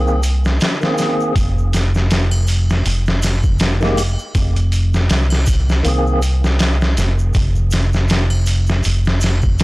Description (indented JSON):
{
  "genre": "trip hop",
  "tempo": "80 BPM",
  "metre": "4/4",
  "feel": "swing 57% on 16ths",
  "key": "unclear",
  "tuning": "A4 = 440 Hz",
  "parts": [
    { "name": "tonewheel organ", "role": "accompaniment", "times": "0.0-6.2 s", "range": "Eb3 to Ab4", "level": "-22 LUFS", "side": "equal", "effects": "overdrive, fast rotary speaker, tremolo, tape echo" },
    { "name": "deep dub fingered electric bass", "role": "bass", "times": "0.0-9.6 s", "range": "F1 to C2", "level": "-15 LUFS", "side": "equal", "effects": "none" },
    { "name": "egg shaker and triangle", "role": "percussion", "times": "0.1-9.6 s", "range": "none", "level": "-32 LUFS", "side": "right 1 dB", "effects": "none" },
    { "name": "trip hop sampler-style drum kit", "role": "drums", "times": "0.2-9.6 s", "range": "hi-hat, kick drum, snare drum", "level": "-19 LUFS", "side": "equal", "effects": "small room ambience" }
  ],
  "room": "digital ambience",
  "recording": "blown-out, overdriven recording, overdrive",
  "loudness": "-14 LUFS",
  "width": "side -21 dB against mid",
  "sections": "0.0-9.6 A section",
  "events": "none",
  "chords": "0.0 Bb9sus4; 1.4 Fm11; 4.3 Bb9sus4/F; 7.3 N.C."
}